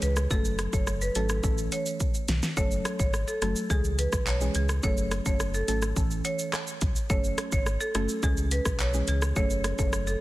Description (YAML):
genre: dancehall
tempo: 106 BPM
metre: 4/4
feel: straight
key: F# minor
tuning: A4 = 440 Hz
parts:
  - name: marimba with hard mallets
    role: melody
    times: 0.0-10.2 s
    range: G#4 to C#5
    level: -32 LUFS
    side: equal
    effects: none
  - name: soft round pluck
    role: accompaniment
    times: 0.0-10.0 s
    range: E3 to A4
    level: -34 LUFS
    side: right 1 dB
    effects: chorus, sidechain pumping
  - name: sub bass with octave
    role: bass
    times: 0.0-10.2 s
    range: F#1 to C#2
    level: -29 LUFS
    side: equal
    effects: none
  - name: pop drum kit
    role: drums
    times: 0.0-10.2 s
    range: handclaps, hi-hat, kick drum, rim click, shaker, snare drum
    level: -28 LUFS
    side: equal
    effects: none
room: digital ambience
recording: dense, heavily limited modern master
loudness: -25 LUFS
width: side -17 dB against mid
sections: 0.0-10.2 A section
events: drum fill 2.0-2.6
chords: 0.3 F#m; 1.4 A; 2.6 F#m; 3.7 C#m; 4.8 F#m; 6.0 A; 7.1 F#m; 8.2 C#m; 9.4 F#m